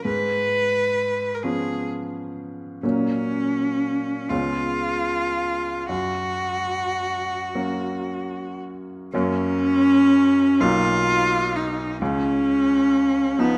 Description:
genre	classical, romantic duo for cello and grand piano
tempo	35-45 BPM (dotted quarters)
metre	6/8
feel	rubato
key	F# major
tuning	A4 = 442 Hz
part	rich cello	melody	0.0-13.6 s	B3 to B4	-23 LUFS	equal	none
part	clear baby grand piano	accompaniment	0.0-13.6 s	B1 to D#4	-29 LUFS	equal	none
room	moderate scoring stage reverb, RT60 1.8 s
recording	none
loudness	-22 LUFS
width	mono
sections	0.0-9.1 A section; 9.1-13.6 A section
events	none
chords	0.1 C#7/G#; 2.8 F#/A#; 4.3 C#7; 5.9 F#; 10.6 Bmaj7; 12.0 C#add9

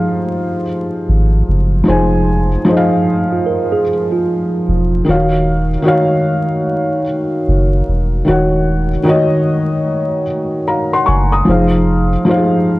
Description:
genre	lo-fi hip hop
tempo	75 BPM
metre	4/4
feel	swing 64% on 16ths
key	F phrygian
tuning	A4 = 443 Hz
part	felt-muted upright piano	accompaniment	0.0-12.8 s	Eb3 to Eb6	-13 LUFS	equal	cassette tape, low-pass filter
part	soft dub sub bass	bass	1.1-12.2 s	Eb1 to Ab1	-15 LUFS	equal	none
part	mellow tine electric piano	second line	3.3-5.0 s	F4 to Bb4	-19 LUFS	right 5 dB	medium stereo tremolo, low-pass filter, tape echo
room	light reverb, small room ambience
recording	vinyl crackle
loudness	-12 LUFS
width	side -18 dB against mid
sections	0.0-12.8 A section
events	none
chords	0.0 Fm7; 5.1 Ebm7; 11.5 Fm7

